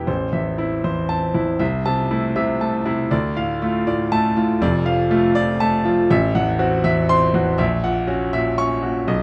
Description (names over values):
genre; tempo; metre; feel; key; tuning
classical, virtuoso piano study; 80 BPM (dotted quarters); 6/8; rubato; A minor; A4 = 440 Hz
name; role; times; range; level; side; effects
warm concert grand piano; solo; 0.0-9.2 s; F1 to C#6; -20 LUFS; equal; none
room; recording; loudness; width
light reverb; close, detailed microphones; -20 LUFS; mono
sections
0.1-9.2 A section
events
none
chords
0.1 Am; 1.6 Am/C; 3.1 Dm; 4.6 Dm/F; 6.1 F#m7b5/A; 7.6 F#7/A#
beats
| 0.08 0.84 | 1.60 2.35 | 3.12 3.88 | 4.62 5.35 | 6.10 6.85 | 7.59 8.33 | 9.08